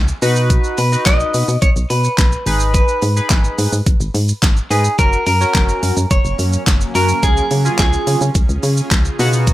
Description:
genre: dance-pop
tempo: 107 BPM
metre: 4/4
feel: straight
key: unclear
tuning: A4 = 438 Hz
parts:
  - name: solid FM bass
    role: bass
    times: 0.0-9.5 s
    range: F#1 to C#3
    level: -17 LUFS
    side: equal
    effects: sidechain pumping
  - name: pop drum kit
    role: drums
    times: 0.1-9.5 s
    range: handclaps, hi-hat, kick drum, shaker, snare drum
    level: -16 LUFS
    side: equal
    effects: overdrive
  - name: chorused polysynth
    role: accompaniment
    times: 0.2-9.5 s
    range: B3 to B4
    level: -21 LUFS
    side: equal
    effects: sidechain pumping
  - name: clean electric guitar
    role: melody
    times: 0.8-8.3 s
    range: G#4 to D#5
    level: -20 LUFS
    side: right 1 dB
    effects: tape echo
  - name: granular cloud pad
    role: sustained chords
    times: 6.0-9.5 s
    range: C#3 to G#4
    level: -27 LUFS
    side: equal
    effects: built-in reverb, sidechain pumping
room: digital ambience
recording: none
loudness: -13 LUFS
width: side -15 dB against mid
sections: 0.0-9.5 A section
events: none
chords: 0.2 B; 2.5 G#m; 5.0 F#; 7.2 C#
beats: | 0.50 1.06 1.62 2.18 | 2.75 3.31 3.87 4.43 | 4.99 5.55 6.11 6.67 | 7.23 7.79 8.35 8.91 | 9.47

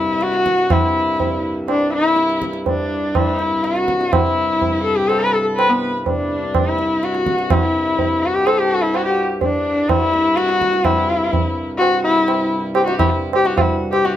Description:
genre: indian classical, Hindustani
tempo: 125 BPM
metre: 7/4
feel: straight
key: C raga yaman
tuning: A4 = 439 Hz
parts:
  - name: dark sarangi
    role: melody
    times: 0.0-14.2 s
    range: B3 to B4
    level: -17 LUFS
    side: left 2 dB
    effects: none
  - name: rich sarangi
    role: second line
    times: 0.0-14.2 s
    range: D4 to B4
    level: -27 LUFS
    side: right 4 dB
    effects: none
  - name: pedal harmonium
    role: drone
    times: 0.0-14.1 s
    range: C2 to G2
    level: -26 LUFS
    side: equal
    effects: none
  - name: tabla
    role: percussion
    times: 0.2-14.2 s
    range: none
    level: -21 LUFS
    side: right 3 dB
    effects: none
room: light reverb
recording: close, detailed microphones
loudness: -15 LUFS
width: side -11 dB against mid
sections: 0.0-14.2 A section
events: speeding up 0.0-14.2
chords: none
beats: 0.22 | 0.71 1.20 1.69 2.18 2.67 3.15 3.64 | 4.12 4.61 5.09 5.58 6.06 6.54 7.02 | 7.50 7.98 8.46 8.94 9.42 9.90 10.37 | 10.85 11.32 11.80 12.27 12.74 13.21 13.69 | 14.16

